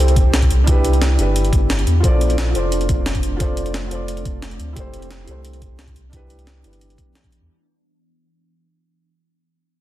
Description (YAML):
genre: liquid drum and bass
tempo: 176 BPM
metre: 4/4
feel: straight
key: unclear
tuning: A4 = 442 Hz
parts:
  - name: felt-muted upright piano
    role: accompaniment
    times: 0.0-7.5 s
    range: D4 to D5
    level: -24 LUFS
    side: right 1 dB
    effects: digital delay
  - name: ethereal airy pad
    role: sustained chords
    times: 0.0-7.5 s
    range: E3 to G4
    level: -30 LUFS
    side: left 1 dB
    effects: ensemble chorus, built-in reverb
  - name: warm sub bass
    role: bass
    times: 0.0-7.5 s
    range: F1 to E2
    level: -19 LUFS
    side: equal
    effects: none
  - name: breakbeat sampler-style drum kit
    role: drums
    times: 0.1-7.4 s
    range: hi-hat, snare drum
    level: -25 LUFS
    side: equal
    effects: small room ambience
  - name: electronic kick drum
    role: drums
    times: 0.2-7.3 s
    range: none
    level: -18 LUFS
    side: equal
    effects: small room ambience
room: light reverb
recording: dense, heavily limited modern master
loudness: -15 LUFS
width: side -14 dB against mid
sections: 0.0-7.5 A section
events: fade-out 0.0-7.5; filter sweep on ambient pad 0.0-7.5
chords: 0.0 Fmaj9; 0.5 Cmaj9; 2.0 Bbmaj9; 4.8 Fmaj9; 6.0 Cmaj9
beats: 0.33 | 0.68 1.02 1.36 1.70 | 2.04 2.38 2.72 3.06 | 3.40 3.74 4.08 4.42 | 4.77 5.11 5.45 5.79 | 6.13 6.47 6.81 7.15